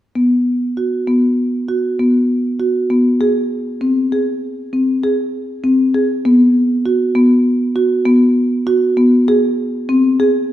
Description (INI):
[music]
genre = contemporary instrumental, contemporary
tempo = 99 BPM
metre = 5/4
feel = straight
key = unclear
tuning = A4 = 439 Hz
[part]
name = marimba with soft mallets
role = solo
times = 0.2-10.5 s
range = B3 to G#4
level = -13 LUFS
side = equal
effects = none
[sound]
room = moderate recital hall reverb, RT60 1.6 s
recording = none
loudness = -13 LUFS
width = side -12 dB against mid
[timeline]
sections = 0.2-6.2 A section; 6.2-10.5 B section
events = none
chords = none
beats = | 0.16 0.77 1.38 1.99 2.59 | 3.20 3.81 4.42 5.03 5.63 | 6.24 6.85 7.46 8.06 8.67 | 9.28 9.89 10.50